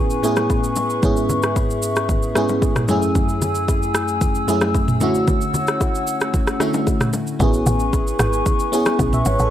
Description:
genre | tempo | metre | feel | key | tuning
amapiano | 113 BPM | 4/4 | straight | A major | A4 = 438 Hz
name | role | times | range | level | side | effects
FM electric piano with soft pad layer | accompaniment | 0.0-9.5 s | F#2 to E5 | -20 LUFS | equal | chorus
hollow large flute ensemble | sustained chords | 0.0-9.5 s | C#4 to E6 | -24 LUFS | left 2 dB | sidechain pumping
afro-pop drum kit | drums | 0.1-9.5 s | kick drum, rim click, shaker, toms | -21 LUFS | equal | none
bongos and congas | percussion | 0.2-9.4 s | none | -28 LUFS | left 2 dB | none
woody log drum bass | bass | 7.4-9.5 s | G#1 to B1 | -20 LUFS | equal | none
room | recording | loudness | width
little or no reverb | dry, gritty hardware recording | -16 LUFS | side -11 dB against mid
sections
0.0-9.5 A section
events
none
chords
0.0 Amaj9; 1.0 C#m7/G#; 2.9 F#m9; 5.0 Dmaj9; 7.4 Amaj9

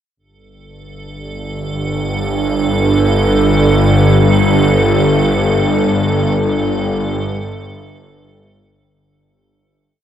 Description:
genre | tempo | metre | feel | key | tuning
dark ambient drone | free time | none | none | unclear | A4 = 441 Hz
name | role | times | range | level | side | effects
bowed-like drone | drone | 1.4-9.0 s | G1 to G2 | -13 LUFS | equal | built-in reverb
icy glass pad | texture | 1.3-8.9 s | A4 | -19 LUFS | right 2 dB | chorus, built-in reverb
room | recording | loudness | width
wet cathedral reverb, RT60 4.9 s | worn, warbling old tape, cassette tape, warbly pitch drift | -12 LUFS | side -10 dB against mid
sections
0.2-8.9 A section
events
fade-in on synth drone 0.2-8.9; fade-in on ambient pad 0.2-8.9; fade-out 4.6-8.9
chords
0.2 Gsus2

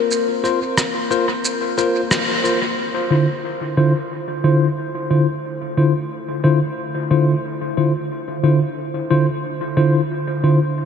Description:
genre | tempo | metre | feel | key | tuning
ambient dub | 90 BPM | 4/4 | swing 56% on 16ths | D minor | A4 = 440 Hz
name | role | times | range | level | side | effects
deep dark ambient pad | sustained chords | 0.0-10.9 s | D4 to F5 | -26 LUFS | left 2 dB | chorus, built-in reverb
electronic shaker and rim click | drums | 0.1-2.6 s | none | -22 LUFS | equal | low-pass filter on perc, studio reverb, low-pass filter on snare, dub echo
tine electric piano | stabs | 0.4-10.6 s | D3 to C5 | -17 LUFS | left 1 dB | medium stereo tremolo, low-pass filter, dub echo
room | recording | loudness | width
moderate huge ambient reverb, RT60 4.6 s | dreamy mix soaked in reverb | -16 LUFS | side -7 dB against mid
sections
0.0-2.8 A section; 2.8-10.9 B section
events
band accent 2.1-2.4; filter sweep on ambient pad 2.8-10.9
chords
0.0 Bbsus2; 2.8 Dm7

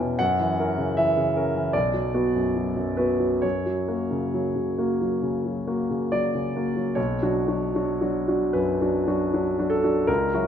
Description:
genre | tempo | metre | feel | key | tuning
classical, romantic character piece for solo piano | 66-80 BPM | 4/4 | rubato | B minor | A4 = 440 Hz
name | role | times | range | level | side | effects
clear concert grand piano | solo | 0.0-10.5 s | B1 to G5 | -22 LUFS | equal | none
room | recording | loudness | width
moderate recital hall reverb, RT60 1.4 s | none | -22 LUFS | side -8 dB against mid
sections
0.0-7.0 A section; 7.0-10.5 B section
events
none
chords
0.2 F#7; 1.7 Bm; 3.4 F#; 7.0 Bm

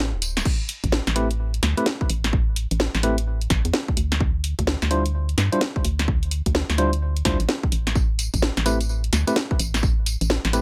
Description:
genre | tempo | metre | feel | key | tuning
UK garage, two-step garage | 128 BPM | 4/4 | swing 63% on 16ths | unclear | A4 = 440 Hz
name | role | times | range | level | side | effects
organ-like FM bass | bass | 0.0-10.6 s | D1 to G2 | -26 LUFS | equal | tube saturation
house drum kit | drums | 0.2-10.6 s | crash cymbal, hi-hat, snare drum, tambourine | -27 LUFS | equal | none
electronic kick drum | drums | 0.5-9.9 s | none | -26 LUFS | equal | none
tine electric piano | stabs | 1.2-10.6 s | G3 to C5 | -27 LUFS | equal | delay
room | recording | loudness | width
little or no reverb | none | -23 LUFS | mono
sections
0.5-10.6 A section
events
break 0.0-0.5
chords
0.5 N.C.; 4.2 Dsus4; 8.0 N.C.

